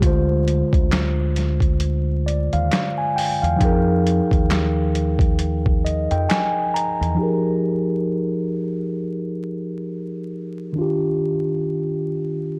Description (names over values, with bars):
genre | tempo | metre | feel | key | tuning
lo-fi hip hop | 67 BPM | 4/4 | swing 60% on 16ths | F dorian | A4 = 440 Hz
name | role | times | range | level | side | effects
mellow tine electric piano | accompaniment | 0.0-12.6 s | D3 to Bb5 | -24 LUFS | equal | low-pass filter
deep dub fingered electric bass | bass | 0.0-7.2 s | D2 to F2 | -24 LUFS | equal | none
lo-fi sampler-style drum kit | drums | 0.0-7.2 s | handclaps, hi-hat, kick drum, snare drum | -24 LUFS | equal | overdrive
room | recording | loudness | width
moderate spring reverb, RT60 2.6 s | vinyl crackle | -21 LUFS | mono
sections
0.0-7.2 A section; 7.2-12.6 B section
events
tine electric piano fill 5.4-7.2; filter sweep on tine electric piano 7.2-12.6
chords
0.0 Dm7b5; 3.6 Fm11; 10.8 Ebmaj9